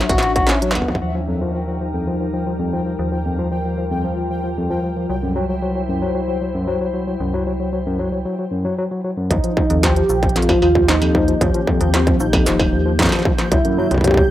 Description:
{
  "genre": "IDM",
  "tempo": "114 BPM",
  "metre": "4/4",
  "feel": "straight",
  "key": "unclear",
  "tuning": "A4 = 440 Hz",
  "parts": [
    { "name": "warm velvety synth lead", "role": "melody", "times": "0.0-0.4, 9.3-14.3 s", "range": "C4 to F#5", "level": "-20 LUFS", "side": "right 1 dB", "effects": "chorus, ping-pong delay" },
    { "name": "glassy FM pad", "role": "sustained chords", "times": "0.0-14.3 s", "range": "C3 to E5", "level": "-27 LUFS", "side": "left 2 dB", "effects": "ensemble chorus, built-in reverb, vintage 12-bit sampler grit" },
    { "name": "overdriven tine electric piano", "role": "arpeggios", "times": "0.0-14.2 s", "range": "F2 to F#4", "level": "-21 LUFS", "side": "left 2 dB", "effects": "low-pass filter, digital delay" },
    { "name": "metallic FM bass", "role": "bass", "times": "0.0-14.2 s", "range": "Eb1 to G2", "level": "-23 LUFS", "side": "right 1 dB", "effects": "tube saturation" },
    { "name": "industrial drum kit", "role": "drums", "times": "0.0-0.9, 9.3-14.1 s", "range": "cabasa, hi-hat, snare drum, struck metal", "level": "-22 LUFS", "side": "right 1 dB", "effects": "low-pass filter on hats, low-pass filter on perc, low-pass filter on snare" },
    { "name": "pulsing gated texture", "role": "texture", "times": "1.1-14.3 s", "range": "E4 to G6", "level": "-33 LUFS", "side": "right 1 dB", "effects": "chorus, built-in reverb" },
    { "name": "electronic kick drum", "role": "drums", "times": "0.1-1.0, 9.3-14.3 s", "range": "none", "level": "-19 LUFS", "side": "right 1 dB", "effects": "distortion" }
  ],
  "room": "light reverb",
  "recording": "rough home demo mix",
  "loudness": "-16 LUFS",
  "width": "side -13 dB against mid",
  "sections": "0.9-9.3 A section; 9.3-14.3 B section",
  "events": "drum fill 0.0-0.9; filter sweep on ambient pad 0.9-9.3; filter sweep on tine electric piano 0.9-9.3",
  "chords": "0.0 Dadd9; 0.9 Eb; 5.1 C; 9.3 Eb; 13.5 C"
}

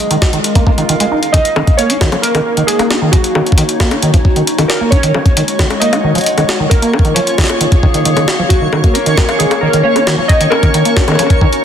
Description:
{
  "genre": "IDM",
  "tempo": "134 BPM",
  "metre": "4/4",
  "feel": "straight",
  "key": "Eb minor",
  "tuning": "A4 = 441 Hz",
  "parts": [
    { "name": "warbly tape-like pad", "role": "sustained chords", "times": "0.0-11.6 s", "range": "Ab3 to Gb5", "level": "-19 LUFS", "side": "left 3 dB", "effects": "chorus, built-in reverb" },
    { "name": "deep acid bass", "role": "arpeggios", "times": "0.1-11.5 s", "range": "Eb3 to Eb4", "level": "-16 LUFS", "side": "right 2 dB", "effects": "lush chorus, tape echo" },
    { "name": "jungle sampler-style drum kit", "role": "drums", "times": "0.1-11.6 s", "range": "bongos, hi-hat, snare drum", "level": "-16 LUFS", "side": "left 2 dB", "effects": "none" },
    { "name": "electronic kick drum", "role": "drums", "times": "0.2-11.5 s", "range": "none", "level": "-11 LUFS", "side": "equal", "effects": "none" },
    { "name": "warbly lo-fi synth keys", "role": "melody", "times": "1.3-11.6 s", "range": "Gb4 to Eb5", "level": "-17 LUFS", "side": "right 2 dB", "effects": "chorus, digital delay" },
    { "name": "twinkling granular texture", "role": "texture", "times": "2.3-11.6 s", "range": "Db4 to Db5", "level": "-22 LUFS", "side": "equal", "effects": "built-in reverb" }
  ],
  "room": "moderate echo chamber reverb, RT60 2.2 s",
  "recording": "dense, heavily limited modern master",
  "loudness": "-9 LUFS",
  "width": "side -8 dB against mid",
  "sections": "0.0-11.6 A section",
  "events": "kick drops out 0.9-1.3",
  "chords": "0.0 Bbm7; 1.3 Ebm9; 4.9 Ab7sus4; 6.7 Bbm7; 8.5 Ebm9"
}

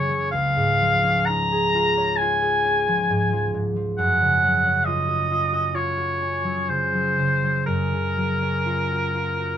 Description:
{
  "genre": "classical, impressionist duo for oboe and harp",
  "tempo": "60-68 BPM",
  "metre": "4/4",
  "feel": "rubato",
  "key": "unclear",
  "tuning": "A4 = 440 Hz",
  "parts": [
    { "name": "clear oboe", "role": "melody", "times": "0.0-9.6 s", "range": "Bb4 to Bb5", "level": "-21 LUFS", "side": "left 1 dB", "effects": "none" },
    { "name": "concert harp", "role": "accompaniment", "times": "0.0-9.6 s", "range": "Db2 to Db5", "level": "-24 LUFS", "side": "equal", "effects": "none" }
  ],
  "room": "light reverb",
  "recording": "minimal, uncompressed stereo recording",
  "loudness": "-19 LUFS",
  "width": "side -9 dB against mid",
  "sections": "0.0-9.6 A section",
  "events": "none",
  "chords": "0.3 Dbadd9; 4.0 Gbmaj7"
}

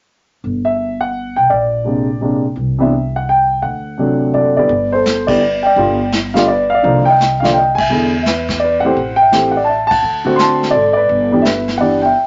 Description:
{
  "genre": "jazz piano trio",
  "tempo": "169 BPM",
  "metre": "3/4",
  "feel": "swing 65% on 8ths",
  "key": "G major",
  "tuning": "A4 = 440 Hz",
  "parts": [
    { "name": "upright bass", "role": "bass", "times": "0.4-12.1 s", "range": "F#1 to E2", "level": "-24 LUFS", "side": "equal", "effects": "none" },
    { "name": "warm grand piano", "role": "melody", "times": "0.6-12.3 s", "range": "C3 to C6", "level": "-15 LUFS", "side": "equal", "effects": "none" },
    { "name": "vintage brush drum kit", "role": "drums", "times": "4.7-12.3 s", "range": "brushed snare drum, hi-hat, kick drum, ride cymbal, snare drum", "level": "-25 LUFS", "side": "equal", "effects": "none" }
  ],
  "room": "wet studio reverb, RT60 0.5 s",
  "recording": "nothing above 7.5 kHz",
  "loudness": "-14 LUFS",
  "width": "mono",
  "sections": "0.4-4.7 A section; 4.7-12.3 B section",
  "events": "band accent 5.2, 7.7, 9.8",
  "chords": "0.4 Gmaj7(no3); 1.5 Bb9; 2.6 C; 3.6 D7; 4.7 G; 6.8 Cm11; 7.9 E7; 9.0 Am7; 10.0 D7; 11.1 G6"
}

